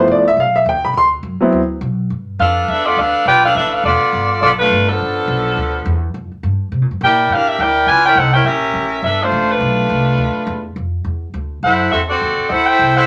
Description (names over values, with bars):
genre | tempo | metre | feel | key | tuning
jazz, big band swing | 208 BPM | 4/4 | swing 60% on 8ths | G major | A4 = 439 Hz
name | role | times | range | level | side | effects
clear baby grand piano | accompaniment | 0.0-1.6 s | F3 to C6 | -14 LUFS | equal | none
upright bass | bass | 0.0-13.1 s | E1 to C3 | -23 LUFS | equal | none
mellow saxophone section | melody | 2.4-13.1 s | F3 to Ab5 | -15 LUFS | equal | none
room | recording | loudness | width
wet studio reverb, RT60 0.6 s | none | -15 LUFS | mono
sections
0.0-2.1 A section; 2.1-13.1 B section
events
grand piano solo 0.0-2.1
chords
0.0 G13; 1.0 D13; 2.1 G13; 6.7 C13 (rootless); 7.9 C#dim7; 9.0 G13; 11.3 D9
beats
0.09 0.37 0.66 | 0.95 1.24 1.53 1.82 | 2.11 2.40 2.68 2.97 | 3.26 3.55 3.84 4.13 | 4.42 4.71 4.99 5.28 | 5.57 5.86 6.15 6.44 | 6.73 7.01 7.30 7.59 | 7.88 8.17 8.46 8.75 | 9.04 9.32 9.61 9.90 | 10.19 10.48 10.77 11.06 | 11.35 11.64 11.93 12.22 | 12.51 12.80